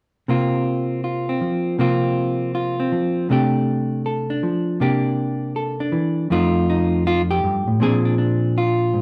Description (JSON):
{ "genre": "solo jazz", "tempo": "159 BPM", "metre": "4/4", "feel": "swing 64% on 8ths", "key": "unclear", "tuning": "A4 = 440 Hz", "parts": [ { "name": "hollow-body jazz guitar", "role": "solo", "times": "0.3-9.0 s", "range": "F2 to A4", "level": "-20 LUFS", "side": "equal", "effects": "none" } ], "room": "wet club reverb, RT60 0.6 s", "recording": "heard from further back in the room", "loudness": "-21 LUFS", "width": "mono", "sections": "0.3-6.3 A section; 6.3-9.0 B section", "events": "none", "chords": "0.3 C7sus4; 3.3 F69/C; 4.8 C9; 6.3 F9; 7.8 Bb9" }